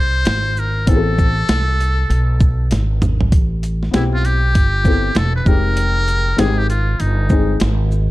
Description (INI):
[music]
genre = hip hop, jazz-hop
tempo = 98 BPM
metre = 4/4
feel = swing 62% on 16ths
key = unclear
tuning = A4 = 440 Hz
[part]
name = trumpet with metal mute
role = melody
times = 0.0-7.6 s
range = Eb4 to C5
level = -21 LUFS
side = left 1 dB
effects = none
[part]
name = upright bass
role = bass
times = 0.0-8.1 s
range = E1 to C2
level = -17 LUFS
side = equal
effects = none
[part]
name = boom bap sampler-style drum kit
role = drums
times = 0.3-8.1 s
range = hi-hat, kick drum, shaker, snare drum, toms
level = -17 LUFS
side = equal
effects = none
[part]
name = warm upright piano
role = accompaniment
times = 0.9-7.6 s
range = Ab3 to A4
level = -22 LUFS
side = left 4 dB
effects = none
[sound]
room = studio reverb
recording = dark, warm production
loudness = -14 LUFS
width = side -18 dB against mid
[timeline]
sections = 0.0-3.3 A section; 3.3-8.1 B section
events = drum fill 2.7-3.3; muted trumpet solo 3.3-8.1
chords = 0.0 Amadd9; 3.3 Am9; 5.5 Fm9